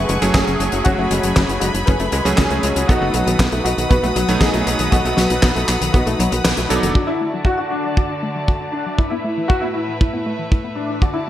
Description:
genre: italo disco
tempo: 118 BPM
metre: 4/4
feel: straight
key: unclear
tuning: A4 = 440 Hz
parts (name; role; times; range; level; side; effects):
- dark baby grand piano; melody; 0.0-11.3 s; C#4 to B4; -22 LUFS; left 1 dB; ensemble chorus, digital delay
- clear studio string section; sustained chords; 0.0-11.3 s; A2 to D#6; -25 LUFS; left 1 dB; low-pass filter
- analog pluck; arpeggios; 0.0-11.2 s; D#3 to F#4; -26 LUFS; left 3 dB; chorus, digital delay
- clear electric grand piano; stabs; 0.0-6.9 s; F#3 to A4; -24 LUFS; right 3 dB; none
- tight sequencer bass; bass; 0.0-6.9 s; F#1 to C#2; -21 LUFS; equal; tube saturation
- damped 70s drum kit; drums; 0.1-6.9 s; handclaps, hi-hat, snare drum; -22 LUFS; left 1 dB; small room ambience, gated reverb
- kick drum; drums; 0.3-11.1 s; none; -16 LUFS; equal; small room ambience
room: moderate plate reverb, RT60 1.9 s, small room ambience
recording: bright 1980s-style digital production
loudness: -15 LUFS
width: side -12 dB against mid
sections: 0.0-7.0 A section; 7.0-11.3 B section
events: kick drops out 6.4-7.0; band accent 6.4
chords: 0.0 F#madd9; 2.9 B7; 7.0 D; 9.0 Asus2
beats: 0.35 | 0.85 1.36 1.87 2.38 | 2.89 3.40 3.90 4.41 | 4.92 5.43 5.94 6.45 | 6.96 7.46 7.97 8.48 | 8.99 9.50 10.01 10.52 | 11.02

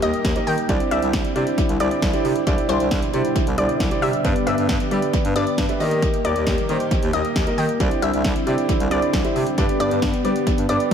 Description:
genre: synth-pop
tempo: 135 BPM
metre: 4/4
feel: straight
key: unclear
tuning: A4 = 440 Hz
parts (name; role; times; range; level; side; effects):
- analog pluck; second line; 0.0-10.8 s; C5 to G5; -27 LUFS; left 3 dB; chorus, tape echo
- warm concert grand piano; accompaniment; 0.0-10.9 s; Bb3 to E5; -23 LUFS; right 3 dB; none
- chorused pulse-width pad; sustained chords; 0.0-10.9 s; B2 to G4; -26 LUFS; left 1 dB; none
- clear bass clarinet; bass; 0.0-10.9 s; C2 to G3; -25 LUFS; equal; none
- punchy analog drum machine; drums; 0.0-10.9 s; hi-hat, kick drum, snare drum, toms; -23 LUFS; equal; tape echo
room: moderate echo chamber reverb, RT60 1.8 s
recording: echo-heavy mix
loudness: -18 LUFS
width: side -8 dB against mid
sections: 0.0-10.9 A section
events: none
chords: 0.0 Eb; 0.7 Cadd9; 4.2 G; 5.8 Eb; 7.8 Cadd9; 9.6 G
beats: 0.25 | 0.69 1.14 1.58 2.02 | 2.47 2.91 3.36 3.80 | 4.25 4.69 5.13 5.58 | 6.02 6.47 6.91 7.36 | 7.80 8.25 8.69 9.13 | 9.58 10.02 10.47 10.91

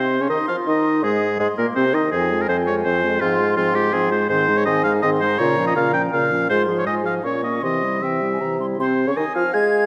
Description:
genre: quick classical-period movement for wind quintet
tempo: 163 BPM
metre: 3/4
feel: rubato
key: F minor from 4.3 s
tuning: A4 = 440 Hz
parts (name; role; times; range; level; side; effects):
- silver concert flute; melody; 0.0-9.9 s; G5 to Ab6; -30 LUFS; equal; none
- clear oboe; second line; 0.0-9.9 s; F4 to Ab5; -25 LUFS; equal; none
- clear French horn; accompaniment; 0.0-9.9 s; Db3 to Ab4; -27 LUFS; equal; none
- clear clarinet; accompaniment; 0.0-9.9 s; Ab3 to Ab5; -30 LUFS; equal; none
- mellow bassoon; bass; 0.0-9.9 s; F2 to Ab3; -24 LUFS; equal; none
room: moderate scoring stage reverb, RT60 1.9 s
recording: none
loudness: -20 LUFS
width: mono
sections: 0.0-8.8 A section; 8.8-9.9 B section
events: none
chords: 0.0 Cmadd11; 1.0 Ab; 2.1 Fm; 3.2 Fm/Ab; 4.3 Ab; 5.4 Bbm; 6.5 Fm/Ab; 7.2 Bbm; 7.6 C; 8.8 Fm/C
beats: 0.30 0.67 | 1.04 1.40 1.76 | 2.12 2.49 2.85 | 3.21 3.57 3.93 | 4.30 4.66 5.03 | 5.39 5.76 6.13 | 6.50 6.87 7.25 | 7.63 8.02 8.40 | 8.79 9.16 9.54

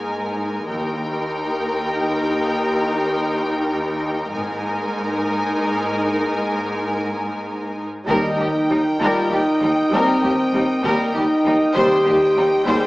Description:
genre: cinematic, epic orchestral film score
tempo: 98 BPM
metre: 3/4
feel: straight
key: Eb major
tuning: A4 = 438 Hz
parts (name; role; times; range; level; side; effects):
- warm symphonic violin section; melody; 0.0-12.9 s; G5 to Ab5; -28 LUFS; left 1 dB; none
- rich studio violin section; second line; 0.0-12.9 s; Eb4 to C5; -25 LUFS; left 1 dB; none
- warm studio viola section; accompaniment; 0.0-12.9 s; G3 to Eb4; -26 LUFS; equal; none
- mellow French horn section; sustained chords; 0.0-12.9 s; Bb3 to Ab4; -22 LUFS; equal; none
- rich symphonic cello section; bass; 0.0-12.8 s; Eb2 to Ab2; -29 LUFS; equal; none
- rich symphonic double bass section; bass; 0.7-1.3, 4.3-4.9, 8.1-12.7 s; Ab1 to Eb2; -31 LUFS; equal; none
- chamber organ, sparkling flutes; sustained chords; 8.1-12.9 s; Eb4 to G5; -26 LUFS; right 1 dB; none
- warm trombone section; sustained chords; 8.1-12.0 s; G3 to Eb4; -33 LUFS; right 1 dB; none
- clear tuba; bass; 8.1-12.8 s; Eb2; -28 LUFS; equal; none
- timpani; percussion; 8.1-9.0, 11.8-12.6 s; Eb3; -31 LUFS; equal; none
- sub drop; sound effects; 8.1-9.9 s; none; -43 LUFS; equal; none
room: wet scoring stage reverb, RT60 2.1 s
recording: small speaker sound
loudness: -18 LUFS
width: side -20 dB against mid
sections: 0.0-8.1 A section; 8.1-12.9 B section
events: build-up 0.0-8.1; impact 8.1-9.9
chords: 0.0 Absus2; 0.7 Eb; 4.4 Absus2; 8.1 Eb; 11.8 Cm/Eb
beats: 0.09 | 0.70 1.31 1.91 | 2.52 3.13 3.74 | 4.35 4.96 5.58 | 6.20 6.83 7.46 | 8.08 8.70 9.31 | 9.92 10.53 11.15 | 11.76 12.36

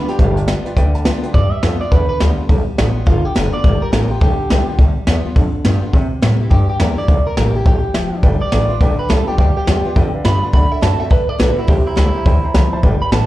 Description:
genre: rockabilly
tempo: 209 BPM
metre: 4/4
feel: swing 62% on 8ths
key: G mixolydian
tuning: A4 = 440 Hz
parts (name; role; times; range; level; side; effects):
- electric guitar at the edge of break-up; melody; 0.0-13.3 s; E4 to B5; -21 LUFS; right 1 dB; slapback echo, tape echo
- picked steel-string acoustic guitar; accompaniment; 0.0-13.3 s; G2 to G4; -23 LUFS; left 3 dB; slapback echo
- dark upright piano; accompaniment; 0.1-1.3, 8.2-13.2 s; A4 to B5; -27 LUFS; right 1 dB; slapback echo
- upright bass; bass; 0.1-13.3 s; F1 to C3; -16 LUFS; equal; none
- jazz brush drum kit; drums; 0.1-13.2 s; hi-hat, kick drum, snare drum; -16 LUFS; equal; none
room: small room ambience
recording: live gig heard through the venue's PA, club reverb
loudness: -12 LUFS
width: side -16 dB against mid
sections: 0.0-1.3 A section; 1.3-13.3 B section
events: upright piano fill 0.8-1.3; clean electric guitar solo 1.3-13.3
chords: 0.0 G7; 5.9 C7; 8.2 G7; 10.5 D7; 11.7 C7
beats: | 0.19 0.48 0.77 1.06 | 1.34 1.63 1.92 2.21 | 2.49 2.78 3.07 3.35 | 3.64 3.93 4.22 4.50 | 4.79 5.08 5.37 5.65 | 5.94 6.23 6.51 6.80 | 7.09 7.38 7.66 7.95 | 8.24 8.53 8.81 9.10 | 9.39 9.68 9.96 10.25 | 10.54 10.82 11.11 11.40 | 11.69 11.97 12.26 12.55 | 12.84 13.12

